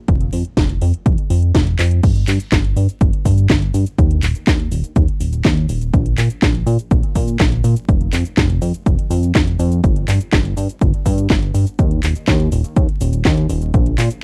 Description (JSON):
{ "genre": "italo disco", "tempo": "123 BPM", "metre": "4/4", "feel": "straight", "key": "G minor", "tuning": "A4 = 440 Hz", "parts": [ { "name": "chorused synth bass", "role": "bass", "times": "0.1-14.1 s", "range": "Eb1 to Bb2", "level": "-19 LUFS", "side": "equal", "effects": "none" }, { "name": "electronic kick drum", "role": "drums", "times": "0.1-13.8 s", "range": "none", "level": "-19 LUFS", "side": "equal", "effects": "overdrive" }, { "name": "house drum kit", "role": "drums", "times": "0.1-14.2 s", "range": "cabasa, crash cymbal, handclaps, hi-hat, snare drum", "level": "-24 LUFS", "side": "equal", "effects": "overdrive" } ], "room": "little or no reverb", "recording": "dry, close 1970s-style studio recording, vinyl crackle", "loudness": "-16 LUFS", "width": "mono", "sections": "0.0-2.0 A section; 2.0-14.2 B section", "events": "drum fill 1.8; band accent 1.8", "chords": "none" }